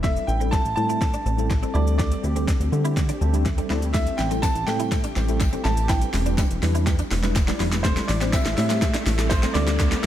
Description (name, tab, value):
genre	dance-pop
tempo	123 BPM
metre	4/4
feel	straight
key	A minor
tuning	A4 = 441 Hz
part	bright baby grand piano	melody	0.0-10.1 s	C5 to A5	-29 LUFS	right 1 dB	dub echo
part	mellow tine electric piano	accompaniment	0.0-10.0 s	G3 to A5	-30 LUFS	equal	medium stereo tremolo, sidechain pumping, dub echo
part	granular cloud pad	sustained chords	0.0-10.1 s	D3 to G4	-34 LUFS	left 1 dB	built-in reverb, sidechain pumping
part	direct-recorded clean electric guitar	riff	0.0-9.9 s	A3 to E4	-35 LUFS	right 2 dB	ensemble chorus, dub echo
part	chorused synth bass	bass	0.0-9.9 s	E1 to D3	-23 LUFS	equal	sidechain pumping
part	deep house drum kit	drums	0.0-10.1 s	hi-hat, kick drum, shaker, snare drum	-24 LUFS	equal	none
part	tambourine	percussion	3.9-9.9 s	none	-44 LUFS	left 5 dB	none
part	riser	sound effects	6.2-10.1 s	none	-36 LUFS	right 1 dB	none
room	light reverb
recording	echo-heavy mix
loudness	-20 LUFS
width	side -11 dB against mid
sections	0.0-10.1 A section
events	build-up 0.0-10.1; drum fill 0.0-10.1; tine electric piano fill 3.0-3.9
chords	0.0 Am7; 1.8 D7sus4; 3.9 Am7; 5.9 Em7; 7.8 Am7; 9.6 D7sus4